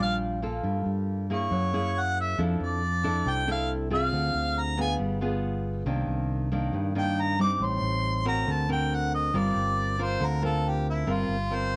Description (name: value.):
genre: bossa nova.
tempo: 138 BPM.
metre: 4/4.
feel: straight.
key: G minor.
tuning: A4 = 439 Hz.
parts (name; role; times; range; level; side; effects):
warm harmonica; melody; 0.0-11.8 s; E4 to D6; -31 LUFS; equal; cassette tape.
nylon-string guitar; accompaniment; 0.0-11.8 s; G2 to Bb4; -32 LUFS; equal; cassette tape.
fingered electric bass; bass; 0.0-11.8 s; G1 to G2; -32 LUFS; equal; none.
room: moderate booth ambience, RT60 0.2 s.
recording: home recording on cassette.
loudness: -28 LUFS.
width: mono.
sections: 0.0-11.8 A section.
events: harmonica solo 0.0-11.8.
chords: 0.0 Ebmaj9 (rootless); 0.6 Gm9; 1.5 F#9; 2.4 F6; 4.1 Dm7b5; 5.0 G7b9; 5.9 Cm9; 7.6 Am7b5; 8.5 D7b13; 9.3 Gm7.